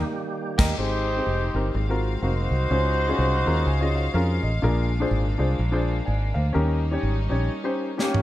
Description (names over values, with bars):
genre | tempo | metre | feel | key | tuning
uptempo gospel | 125 BPM | 4/4 | swing 59% on 8ths | Ab major | A4 = 440 Hz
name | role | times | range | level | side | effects
dark baby grand piano | accompaniment | 0.0-8.2 s | Ab2 to Bb5 | -27 LUFS | left 2 dB | none
percussive tonewheel organ | sustained chords | 0.0-0.8 s | Eb3 to G4 | -32 LUFS | right 4 dB | fast rotary speaker, chorus vibrato
fingered electric bass | bass | 0.0-7.5 s | F1 to F2 | -24 LUFS | equal | none
modern studio drum kit | drums | 0.6-0.7, 8.0-8.2 s | crash cymbal, kick drum, snare drum, toms | -24 LUFS | equal | none
mellow horn section | melody | 0.8-4.4, 8.0-8.2 s | Bb3 to C5 | -26 LUFS | equal | none
rich studio string section | sustained chords | 0.8-8.2 s | Gb3 to F5 | -34 LUFS | left 1 dB | none
room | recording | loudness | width
light reverb, studio reverb | none | -21 LUFS | side -14 dB against mid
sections
0.8-8.2 A section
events
band accent 0.0-0.8; grand piano fill 3.2-4.6; drum fill 8.0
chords
0.0 Eb; 0.8 Abmaj7; 1.7 Ab13; 2.7 Dbmaj7; 4.6 Bb7; 6.6 Eb7